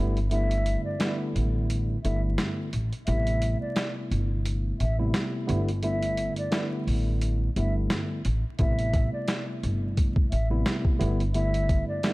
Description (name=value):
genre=hip hop, boom-bap hip-hop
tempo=87 BPM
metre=4/4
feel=swing 56% on 16ths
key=unclear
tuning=A4 = 440 Hz
part: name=tine electric piano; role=accompaniment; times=0.0-12.1 s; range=C3 to E4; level=-30 LUFS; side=equal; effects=medium stereo tremolo, cassette tape, high-pass filter, low-pass filter
part: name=upright bass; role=bass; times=0.0-11.8 s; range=G1 to A1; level=-27 LUFS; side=equal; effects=none
part: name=boom bap sampler-style drum kit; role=drums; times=0.2-12.1 s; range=hi-hat, kick drum, snare drum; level=-28 LUFS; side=equal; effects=none
part: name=mellow hollow concert flute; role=melody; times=0.3-12.1 s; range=D5 to E5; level=-34 LUFS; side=equal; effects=high-pass filter, low-pass filter
room=studio reverb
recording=dark, warm production, vinyl crackle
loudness=-24 LUFS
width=side -21 dB against mid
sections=0.0-12.1 A section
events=break 0.0-8.6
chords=0.0 G69; 3.1 Am7; 5.5 G69; 8.6 Am7; 11.0 G69